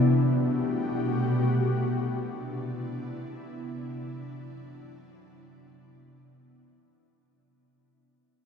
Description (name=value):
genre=hip hop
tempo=free time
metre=none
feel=none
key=unclear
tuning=A4 = 440 Hz
part: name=ethereal airy pad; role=sustained chords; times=0.0-7.3 s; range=B2 to G4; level=-26 LUFS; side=left 1 dB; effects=ensemble chorus, built-in reverb
room=wet lush hall reverb, RT60 2.1 s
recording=none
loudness=-26 LUFS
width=side -7 dB against mid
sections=0.0-7.3 A section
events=fade-out 0.0-7.3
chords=0.0 Gmaj9; 1.8 Cmaj9; 3.6 D9; 5.5 Cmaj9